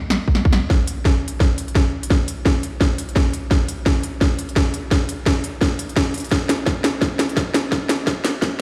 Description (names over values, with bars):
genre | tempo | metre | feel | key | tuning
drum and bass | 171 BPM | 4/4 | swing 58% on 16ths, half-time | none | none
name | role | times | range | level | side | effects
drum and bass drum kit | drums | 0.1-8.5 s | hi-hat, snare drum | -23 LUFS | equal | none
electronic kick drum | drums | 0.3-8.5 s | none | -21 LUFS | equal | overdrive
room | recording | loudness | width
moderate lush hall reverb, RT60 2.3 s | played on a big sound system in a bare room, stone room reverb, high-pass filter | -20 LUFS | mono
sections
0.7-8.6 A section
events
build-up 0.7-8.6; drum fill 0.7-8.6; filter sweep 0.7-8.6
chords
none